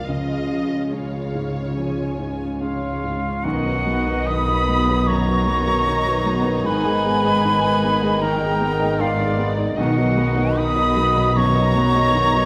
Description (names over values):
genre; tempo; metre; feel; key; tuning
cinematic, emotional film score for orchestra; 70-78 BPM; 4/4; rubato; unclear; A4 = 441 Hz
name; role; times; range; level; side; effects
muted studio violin section; melody; 0.0-12.5 s; D#4 to Eb5; -36 LUFS; equal; none
muted studio violin section; second line; 0.0-12.5 s; Db5 to B5; -31 LUFS; equal; none
felt-muted upright piano; accompaniment; 0.0-12.5 s; B1 to Eb5; -28 LUFS; equal; none
muted studio viola section; accompaniment; 0.0-12.5 s; D#3 to F4; -31 LUFS; equal; none
concert harp; arpeggios; 0.0-12.5 s; Ab2 to Db5; -32 LUFS; equal; none
muted studio cello section; bass; 0.0-12.5 s; Ab2 to Db3; -28 LUFS; equal; none
muted symphonic double bass section; bass; 0.0-12.5 s; Ab1 to Db2; -30 LUFS; equal; none
silver concert flute; second line; 2.6-12.5 s; F5 to D#6; -25 LUFS; equal; none
warm cor anglais; second line; 2.6-12.5 s; F4 to D#5; -29 LUFS; equal; none
mellow French horn section; sustained chords; 3.4-12.5 s; D#3 to B3; -30 LUFS; equal; none
room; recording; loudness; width
moderate scoring stage reverb, RT60 1.8 s; none; -20 LUFS; mono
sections
0.0-3.4 A section; 3.4-12.5 B section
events
none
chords
0.1 Db; 3.4 B; 6.7 Abm; 9.8 B